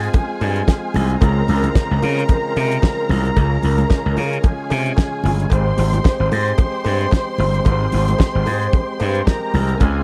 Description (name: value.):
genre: disco.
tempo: 112 BPM.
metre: 4/4.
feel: swing 56% on 16ths.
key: Ab major.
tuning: A4 = 440 Hz.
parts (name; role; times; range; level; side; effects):
dark studio string section; second line; 0.0-10.0 s; Ab4 to C6; -26 LUFS; equal; none.
percussive tonewheel organ; sustained chords; 0.0-10.0 s; Db3 to G4; -29 LUFS; equal; overdrive, fast rotary speaker.
gritty slap bass; bass; 0.0-10.0 s; G1 to Db3; -20 LUFS; equal; overdrive.
damped 70s drum kit; drums; 0.0-10.0 s; hi-hat, kick drum, snare drum; -18 LUFS; equal; none.
congas; percussion; 0.1-9.7 s; none; -29 LUFS; equal; none.
cowbell; percussion; 0.1-9.9 s; none; -34 LUFS; equal; none.
room: small room ambience.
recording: none.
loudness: -18 LUFS.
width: mono.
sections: 0.0-10.0 A section.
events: none.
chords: 0.0 Abmaj7; 1.2 Dbmaj7; 5.5 Abmaj7.